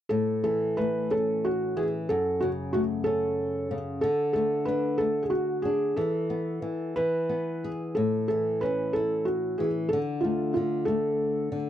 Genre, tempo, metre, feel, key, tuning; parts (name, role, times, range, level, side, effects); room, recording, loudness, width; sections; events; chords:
children's music, lullaby; 62 BPM (dotted quarters); 6/8; rubato; A major; A4 = 439 Hz
felt-muted upright piano; melody; 0.1-11.6 s; F4 to B4; -26 LUFS; right 2 dB
flamenco guitar; accompaniment; 0.1-11.7 s; F#2 to G#4; -30 LUFS; left 4 dB
little or no reverb; dry, close 1970s-style studio recording; -25 LUFS; side -11 dB against mid
0.1-11.7 A section
0.1 A; 2.1 F#m; 4.0 D5; 6.0 Esus4; 7.0 E; 8.0 A; 9.9 D5